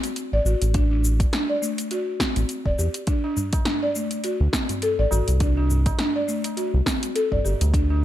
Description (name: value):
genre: organic downtempo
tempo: 103 BPM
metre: 4/4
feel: swing 56% on 16ths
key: D mixolydian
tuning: A4 = 438 Hz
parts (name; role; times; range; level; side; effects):
- buzzing marimba with soft mallets; arpeggios; 0.0-8.0 s; A3 to D5; -25 LUFS; left 1 dB; tape echo
- deep house drum kit; drums; 0.0-7.9 s; hi-hat, shaker, snare drum; -28 LUFS; equal; overdrive
- round analog bass; bass; 0.3-8.0 s; E1 to E2; -20 LUFS; equal; sidechain pumping
- electronic kick drum; drums; 0.7-7.9 s; none; -24 LUFS; equal; overdrive
- tabla; percussion; 3.2-8.0 s; none; -32 LUFS; right 1 dB; none
room: little or no reverb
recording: none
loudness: -20 LUFS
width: side -12 dB against mid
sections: 0.0-8.0 A section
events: none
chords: 0.0 D7; 0.7 Am; 3.1 D7; 5.4 C5